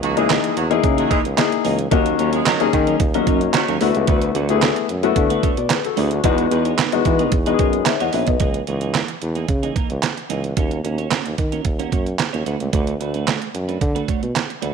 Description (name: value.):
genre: early-eighties boogie funk.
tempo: 111 BPM.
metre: 4/4.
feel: straight.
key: C# dorian.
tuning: A4 = 436 Hz.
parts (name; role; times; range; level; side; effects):
warm horn section; second line; 0.0-3.8 s; D#3 to A#4; -25 LUFS; right 3 dB; none.
clean electric guitar; riff; 0.0-14.7 s; E3 to C#5; -27 LUFS; right 14 dB; analog chorus.
clear tuba; bass; 0.0-14.7 s; A#1 to E3; -22 LUFS; equal; none.
detuned 8-bit digital drum machine; drums; 0.0-14.7 s; handclaps, hi-hat, kick drum, snare drum; -21 LUFS; right 4 dB; none.
warm grand piano; accompaniment; 0.2-8.5 s; G#3 to F#5; -19 LUFS; left 11 dB; none.
room: light reverb, small room ambience.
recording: 1960s-style stereo with parts hard left and right.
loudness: -17 LUFS.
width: side -6 dB against mid.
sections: 0.0-8.4 A section; 8.4-14.7 B section.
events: none.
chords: 0.0 C#m69; 1.9 D#m7; 3.8 D6; 6.2 Emaj7; 8.4 C#m69; 10.6 D#m7; 12.5 D6.